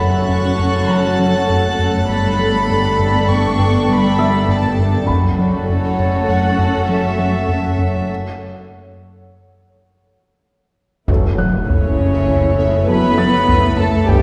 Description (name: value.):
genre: cinematic, suspense film score.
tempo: 100 BPM.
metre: 5/4.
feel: straight.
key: F# phrygian.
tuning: A4 = 440 Hz.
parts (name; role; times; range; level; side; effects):
dark chamber violin section; melody; 0.0-14.2 s; C#5 to C#6; -25 LUFS; equal; none.
warm symphonic violin section; second line; 0.0-14.2 s; C#4 to B4; -24 LUFS; equal; none.
dark symphonic viola section; accompaniment; 0.0-14.2 s; A3 to E4; -25 LUFS; equal; none.
pulsing gated texture; sustained chords; 0.0-14.2 s; A4 to G5; -26 LUFS; equal; chorus, built-in reverb.
rubbery square bass; riff; 0.0-14.2 s; F#2 to G3; -22 LUFS; equal; none.
dark symphonic double bass section; bass; 0.0-14.2 s; F#1 to G1; -26 LUFS; equal; none.
rich studio cello section; bass; 0.0-14.2 s; F#2 to B3; -24 LUFS; equal; none.
felt-muted upright piano; texture; 0.0-14.2 s; E5 to A6; -31 LUFS; equal; none.
warm symphonic violin section; texture; 0.0-4.7 s; F#6 to A6; -33 LUFS; equal; none.
taiko ensemble; drums; 5.1-6.2, 11.1-14.2 s; none; -24 LUFS; equal; none.
warm French horn section; sustained chords; 11.1-14.2 s; B3 to A4; -29 LUFS; equal; none.
warm trombone section; sustained chords; 11.1-14.2 s; D3 to G3; -30 LUFS; equal; none.
impact; sound effects; 11.1-14.1 s; none; -26 LUFS; equal; none.
room: wet scoring stage reverb, RT60 1.6 s.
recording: heard from further back in the room.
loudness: -16 LUFS.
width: mono.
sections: 0.0-11.1 A section; 11.1-14.2 A section.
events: break 8.1-11.1; impact 11.1-14.1.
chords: 0.0 F#m; 2.1 Gadd9; 5.1 F#m7; 8.1 N.C.; 11.1 F#m7.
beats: 0.29 0.89 1.49 | 2.09 2.69 3.29 3.89 4.49 | 5.09 5.69 6.29 6.89 7.49 | 8.09 8.69 9.29 9.89 10.49 | 11.09 11.69 12.29 12.89 13.49 | 14.09.